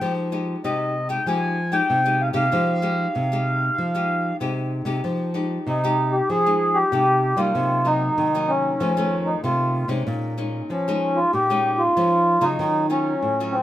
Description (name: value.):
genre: samba and choro.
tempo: 95 BPM.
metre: 4/4.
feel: straight.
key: F minor.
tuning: A4 = 436 Hz.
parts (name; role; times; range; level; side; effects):
mellow accordion; melody; 0.0-13.6 s; C4 to Ab5; -20 LUFS; equal; none.
nylon-string guitar; accompaniment; 0.0-13.6 s; F2 to G4; -28 LUFS; left 3 dB; none.
nylon-string guitar; bass; 0.0-13.6 s; A2 to G3; -25 LUFS; equal; none.
room: moderate studio reverb, RT60 0.9 s.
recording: minimal, uncompressed stereo recording.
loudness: -19 LUFS.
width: side -13 dB against mid.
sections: 0.0-5.0 A section; 5.0-13.6 A section.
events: none.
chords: 0.0 Fm9; 7.6 Cm7b5; 8.8 F7b13; 10.1 Bbm7; 12.6 Ebm9.